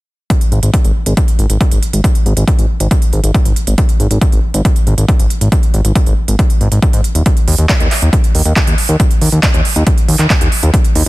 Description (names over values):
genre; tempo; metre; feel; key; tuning
uplifting trance; 138 BPM; 4/4; straight; unclear; A4 = 441 Hz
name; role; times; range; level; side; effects
big-room dance drum kit; drums; 0.3-11.0 s; handclaps, hi-hat; -19 LUFS; right 2 dB; overdrive, sidechain pumping on hats
electronic kick drum; drums; 0.3-10.8 s; none; -12 LUFS; equal; overdrive
fat analog bass; bass; 0.5-11.1 s; Eb1 to Ab2; -12 LUFS; equal; sidechain pumping
room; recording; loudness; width
little or no reverb; dense, heavily limited modern master; -10 LUFS; side -19 dB against mid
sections
0.3-11.1 A section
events
none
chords
none